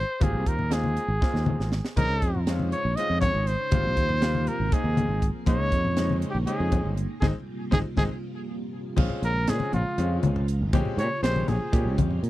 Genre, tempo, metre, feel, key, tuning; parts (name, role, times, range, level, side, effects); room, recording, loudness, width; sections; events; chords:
electric jazz fusion; 240 BPM (eighths); 7/8; straight; Bb dorian; A4 = 440 Hz
clear trumpet; melody; 0.0-12.0 s; F4 to Eb5; -29 LUFS; equal; tape echo
fingered electric bass; bass; 0.0-12.3 s; G1 to Bb2; -26 LUFS; equal
bright grand piano; accompaniment; 0.2-12.2 s; G3 to Ab4; -33 LUFS; left 2 dB
crisp fusion drum kit; drums; 0.2-12.3 s; crash cymbal, hi-hat, kick drum, snare drum; -26 LUFS; right 1 dB
congas; percussion; 0.2-12.2 s; -29 LUFS; left 4 dB
string machine, full ensemble; sustained chords; 2.0-12.3 s; C3 to C5; -36 LUFS; right 1 dB; ensemble chorus
little or no reverb; dry, close 1970s-style studio recording; -23 LUFS; side -16 dB against mid
0.0-9.0 A section; 9.0-12.3 B section
drum fill 1.2-2.0, 8.2-9.0; band accent 7.2-9.0; trumpet solo 9.0-12.3
0.2 Abmaj13; 2.0 Bbm11; 3.7 Abmaj13; 5.5 Bbm11; 7.2 Abmaj13; 9.0 Bbm9